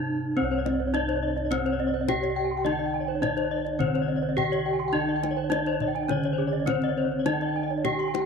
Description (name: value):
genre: Balinese gamelan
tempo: 105 BPM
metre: 4/4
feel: straight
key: unclear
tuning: A4 = 441 Hz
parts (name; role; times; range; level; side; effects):
- gamelan-type bronze metallophone; melody; 0.0-8.3 s; C4 to G4-45c; -28 LUFS; equal; none
- gamelan-type bronze metallophone; accompaniment; 0.0-8.3 s; C3 to D3+50c; -36 LUFS; right 10 dB; none
- gamelan-type bossed gongs; bass; 0.0-8.3 s; C2 to D4+50c; -33 LUFS; equal; none
- gamelan-type bronze metallophone; arpeggios; 0.4-8.2 s; C5 to C6; -30 LUFS; left 12 dB; none
- gamelan-type bronze metallophone; arpeggios; 0.4-8.3 s; Ab4-40c to C6; -33 LUFS; right 11 dB; none
- kendang; percussion; 0.7-8.3 s; none; -34 LUFS; left 10 dB; none
room: moderate spring reverb, RT60 2.6 s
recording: 1960s-style stereo with parts hard left and right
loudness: -24 LUFS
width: side -6 dB against mid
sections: 0.4-8.3 A section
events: break 0.0-0.4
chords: none